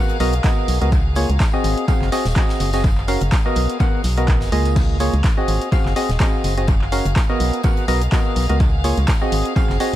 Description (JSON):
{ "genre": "piano house", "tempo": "125 BPM", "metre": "4/4", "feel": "swing 56% on 16ths", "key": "Db major", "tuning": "A4 = 440 Hz", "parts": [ { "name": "rich chamber string section", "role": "sustained chords", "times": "0.0-10.0 s", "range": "Ab4 to F5", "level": "-32 LUFS", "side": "left 3 dB", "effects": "sidechain pumping" }, { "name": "percussive organ stab", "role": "riff", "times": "0.0-9.9 s", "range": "Bb3 to Gb5", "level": "-22 LUFS", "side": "equal", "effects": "chorus, sidechain pumping, dub echo" }, { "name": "tight metal drum kit", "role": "drums", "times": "0.1-10.0 s", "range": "hi-hat, snare drum, tambourine", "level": "-36 LUFS", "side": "left 1 dB", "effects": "sidechain pumping on hats, high-pass filter on hats, high-pass filter on snare, sidechain pumping on perc, high-pass filter on perc, high-pass filter on room, dub echo" }, { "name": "organ-like FM bass", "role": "bass", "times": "0.2-10.0 s", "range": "Eb1 to Db2", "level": "-19 LUFS", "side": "equal", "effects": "sidechain pumping" }, { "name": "punchy analog drum machine", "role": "drums", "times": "0.2-10.0 s", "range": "crash cymbal, handclaps, hi-hat", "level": "-29 LUFS", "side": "right 1 dB", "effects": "dub echo" }, { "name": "electronic kick drum", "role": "drums", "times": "0.4-9.7 s", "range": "none", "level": "-18 LUFS", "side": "equal", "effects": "none" } ], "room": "light reverb, small room ambience", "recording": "echo-heavy mix", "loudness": "-16 LUFS", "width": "side -13 dB against mid", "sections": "0.0-10.0 A section", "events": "none", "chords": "0.0 Cbmaj7; 0.9 Db6; 1.6 Ab7; 2.8 Gbmaj7; 4.8 Db6; 5.5 Ab7; 6.7 Gbmaj7; 7.4 Cbmaj7; 8.6 Db6; 9.3 Ab7" }